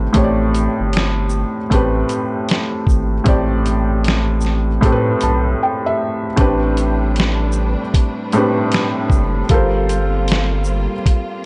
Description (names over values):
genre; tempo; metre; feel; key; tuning
lo-fi hip hop; 77 BPM; 4/4; swing 63% on 16ths; A minor; A4 = 440 Hz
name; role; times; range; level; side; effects
felt-muted upright piano; accompaniment; 0.0-11.5 s; A2 to A5; -20 LUFS; equal; none
saturated sub bass; bass; 0.0-10.9 s; F#1 to A2; -21 LUFS; equal; none
lo-fi sampler-style drum kit; drums; 0.1-11.3 s; hi-hat, kick drum, shaker, snare drum; -19 LUFS; equal; none
rich studio string section; sustained chords; 6.4-11.5 s; G3 to B4; -29 LUFS; equal; none
room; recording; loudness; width
light reverb, digital ambience; dark, warm production, nothing above 10.9 kHz; -17 LUFS; mono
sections
0.0-6.4 A section; 6.4-11.5 B section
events
felt piano fill 4.8-6.4; break 5.6-6.4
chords
0.0 Am9; 6.4 Am11; 9.5 Gm11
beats
| 0.15 0.93 1.71 2.49 | 3.27 4.05 4.83 5.61 | 6.38 7.16 7.94 8.72 | 9.50 10.28 11.06